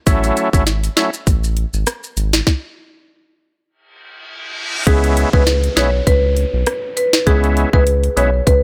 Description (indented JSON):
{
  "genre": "dancehall",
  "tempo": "100 BPM",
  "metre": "4/4",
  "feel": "swing 56% on 16ths",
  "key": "C# minor",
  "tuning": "A4 = 442 Hz",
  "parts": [
    { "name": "overdriven tonewheel organ", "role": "accompaniment", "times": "0.1-1.1, 4.9-8.3 s", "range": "F#3 to E4", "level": "-22 LUFS", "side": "equal", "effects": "chorus vibrato" },
    { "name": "round analog bass", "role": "bass", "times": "0.1-8.6 s", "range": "G#1 to C#2", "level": "-20 LUFS", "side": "equal", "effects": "none" },
    { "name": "island pop drum kit", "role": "drums", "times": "0.1-8.6 s", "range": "hi-hat, kick drum, rim click, snare drum", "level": "-17 LUFS", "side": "equal", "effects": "none" },
    { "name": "maracas", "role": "percussion", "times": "0.1-2.5 s", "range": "none", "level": "-31 LUFS", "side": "equal", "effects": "none" },
    { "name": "reverse cymbal and downlifter", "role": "sound effects", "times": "4.1-8.6 s", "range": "none", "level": "-31 LUFS", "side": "equal", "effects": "none" },
    { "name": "marimba with medium mallets", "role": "melody", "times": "4.9-8.6 s", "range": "G#4 to C#5", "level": "-20 LUFS", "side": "equal", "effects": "tape echo" }
  ],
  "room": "little or no reverb",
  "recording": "none",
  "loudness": "-16 LUFS",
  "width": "mono",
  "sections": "0.0-4.9 A section; 4.9-8.6 B section",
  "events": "stop 2.5-4.9; reverse cymbal 4.1-4.9",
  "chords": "0.1 A6; 4.9 C#m7"
}